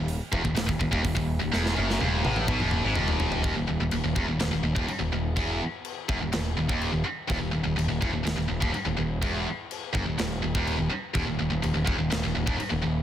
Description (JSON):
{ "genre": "heavy metal", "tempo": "125 BPM", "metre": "4/4", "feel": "straight", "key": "Eb minor", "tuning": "A4 = 440 Hz", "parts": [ { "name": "heavy high-gain guitar", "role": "riff", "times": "0.0-13.0 s", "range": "Eb2 to Cb3", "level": "-27 LUFS", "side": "equal", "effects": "distortion" }, { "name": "growling picked electric bass", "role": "bass", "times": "0.0-13.0 s", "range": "Eb1 to Cb2", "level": "-30 LUFS", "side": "equal", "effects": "overdrive" }, { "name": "tight metal drum kit", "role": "drums", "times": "0.1-12.7 s", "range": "china cymbal, hi-hat, kick drum, snare drum, toms", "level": "-31 LUFS", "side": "equal", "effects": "none" } ], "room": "light reverb", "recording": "dense, heavily limited modern master", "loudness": "-24 LUFS", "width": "side -10 dB against mid", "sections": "0.0-3.4 A section; 3.4-13.0 B section", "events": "drum fill 1.5-3.4", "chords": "0.0 Ebm; 3.4 N.C.", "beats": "0.08 0.56 1.04 | 1.52 2.00 2.48 2.96 | 3.45 3.93 4.41 4.89 | 5.37 5.85 6.33 6.82 | 7.30 7.78 8.26 8.74 | 9.22 9.70 10.18 10.66 | 11.14 11.62 12.11 12.59" }